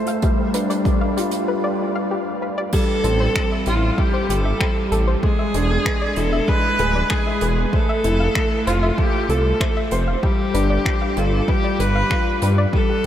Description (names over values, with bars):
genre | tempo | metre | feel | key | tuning
piano and strings electronica | 96 BPM | 4/4 | straight | A minor | A4 = 440 Hz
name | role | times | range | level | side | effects
felt-muted upright piano | riff | 0.0-13.1 s | G3 to C5 | -23 LUFS | left 1 dB | ensemble chorus, tape echo
soft round pluck | arpeggios | 0.1-13.0 s | G4 to F5 | -28 LUFS | left 2 dB | chorus, sidechain pumping, tape echo
jazz brush drum kit | drums | 0.1-13.1 s | crash cymbal, finger snaps, hi-hat | -30 LUFS | right 1 dB | none
electronic kick drum | drums | 0.2-12.9 s | none | -21 LUFS | equal | none
clear viola | melody | 2.7-13.1 s | F4 to B4 | -23 LUFS | equal | none
dark detuned saw bass | bass | 3.0-12.7 s | D1 to G2 | -20 LUFS | equal | tube saturation, sidechain pumping
room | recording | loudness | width
wet huge ambient reverb, RT60 8.3 s | dreamy mix soaked in reverb | -17 LUFS | side -11 dB against mid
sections
0.0-2.7 A section; 2.7-13.1 B section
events
build-up 0.0-2.7; filter sweep on synth arpeggio sound 0.0-2.7; break 1.5-2.7; drop 2.7-13.1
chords
0.2 G7(no3); 2.7 Am7; 5.2 E7; 7.7 Fmaj7; 10.2 G7